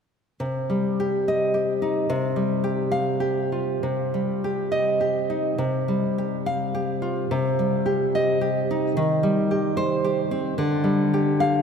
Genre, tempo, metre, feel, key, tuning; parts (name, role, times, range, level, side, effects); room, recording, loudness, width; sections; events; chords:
romantic piece for solo classical guitar; 93-113 BPM; 3/4; rubato; C minor; A4 = 444 Hz
nylon-string guitar; solo; 0.4-11.6 s; C3 to F5; -21 LUFS; equal
wet cathedral reverb, RT60 4.5 s; recorded in a church or concert hall; -21 LUFS; side -6 dB against mid
0.4-3.8 A section; 3.8-11.6 B section
0.4 Cm; 2.1 Csus4; 3.8 Cm; 5.6 Csus4; 7.3 Cm; 9.0 Cm/Eb; 10.6 G5/D